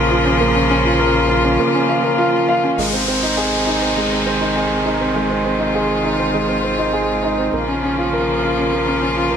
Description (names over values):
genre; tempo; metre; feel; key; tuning
piano and strings electronica; 101 BPM; 4/4; straight; unclear; A4 = 440 Hz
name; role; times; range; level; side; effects
bright string quartet; sustained chords; 0.0-9.4 s; C3 to F4; -20 LUFS; left 2 dB; none
warm upright piano; riff; 0.0-9.4 s; Ab3 to F5; -17 LUFS; right 1 dB; tape echo
round analog bass; bass; 0.0-9.4 s; Ab1 to Bb1; -27 LUFS; left 1 dB; none
downlifter; sound effects; 2.8-7.5 s; none; -24 LUFS; left 1 dB; none
room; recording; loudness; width
wet recital hall reverb, RT60 1.4 s, studio reverb; none; -15 LUFS; side -8 dB against mid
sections
0.0-2.8 A section; 2.8-9.4 B section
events
none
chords
0.0 Bbm; 2.8 Ab; 7.5 Bbm